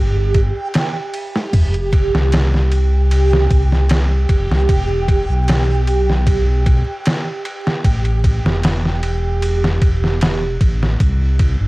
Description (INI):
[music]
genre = trip hop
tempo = 76 BPM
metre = 4/4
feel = straight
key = E phrygian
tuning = A4 = 443 Hz
[part]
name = dark detuned saw bass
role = bass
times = 0.0-11.7 s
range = E1 to C2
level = -16 LUFS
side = equal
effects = none
[part]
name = backwards swelling texture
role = texture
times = 0.0-11.7 s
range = G4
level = -23 LUFS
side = right 3 dB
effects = built-in reverb, cassette tape
[part]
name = trip hop sampler-style drum kit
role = drums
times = 0.3-11.6 s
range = kick drum, ride cymbal, snare drum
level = -17 LUFS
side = equal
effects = small room reverb, cassette tape
[sound]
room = light reverb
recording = home recording on cassette, vinyl crackle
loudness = -14 LUFS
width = side -20 dB against mid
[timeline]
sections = 0.0-11.7 A section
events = none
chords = 0.0 N.C.; 1.5 Fsus2; 4.7 Em; 7.8 A5; 11.0 C5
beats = 0.74 | 1.53 2.32 3.11 3.90 | 4.69 5.48 6.26 7.05 | 7.84 8.63 9.42 10.21 | 11.00